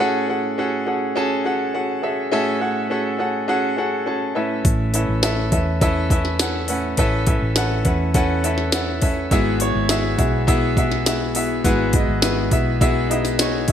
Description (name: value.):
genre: piano-driven pop.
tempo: 103 BPM.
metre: 4/4.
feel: straight.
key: unclear.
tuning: A4 = 438 Hz.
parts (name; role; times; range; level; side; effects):
warm concert grand piano; accompaniment; 0.0-13.7 s; G#2 to A5; -20 LUFS; equal; none.
hollow-body short-scale fingered electric bass; bass; 4.6-13.7 s; G#1 to E2; -23 LUFS; equal; none.
minimal click drum kit; drums; 4.6-13.7 s; hi-hat, kick drum, snare drum; -20 LUFS; equal; gated reverb.
room: moderate plate reverb, RT60 2.4 s.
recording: bright 1980s-style digital production.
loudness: -18 LUFS.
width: side -9 dB against mid.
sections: 0.0-13.7 A section.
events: none.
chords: 0.0 F#madd9/A; 4.4 Aadd9; 9.3 Eadd9/G#.